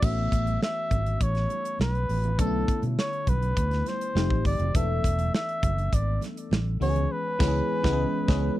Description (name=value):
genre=polished 1980s jazz-funk pop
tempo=102 BPM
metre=4/4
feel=straight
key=unclear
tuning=A4 = 442 Hz
part: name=warm flugelhorn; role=melody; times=0.0-8.6 s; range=A4 to E5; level=-30 LUFS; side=equal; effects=none
part: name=FM electric piano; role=accompaniment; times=0.0-8.6 s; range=D3 to A4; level=-31 LUFS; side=left 2 dB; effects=phaser, wide subtle chorus
part: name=fingered electric bass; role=bass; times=0.0-8.5 s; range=E1 to B2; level=-26 LUFS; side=equal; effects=none
part: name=modern studio drum kit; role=drums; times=0.0-8.5 s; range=crash cymbal, hi-hat, kick drum, snare drum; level=-27 LUFS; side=equal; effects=none
part: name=congas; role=percussion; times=0.0-7.1 s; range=none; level=-40 LUFS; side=right 13 dB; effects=none
room=little or no reverb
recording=dry, close 1970s-style studio recording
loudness=-23 LUFS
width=side -15 dB against mid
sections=0.0-8.6 A section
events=band accent 7.1-8.6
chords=0.0 A69; 2.4 Bm11; 4.2 F9; 4.7 E7sus4; 6.8 C#m7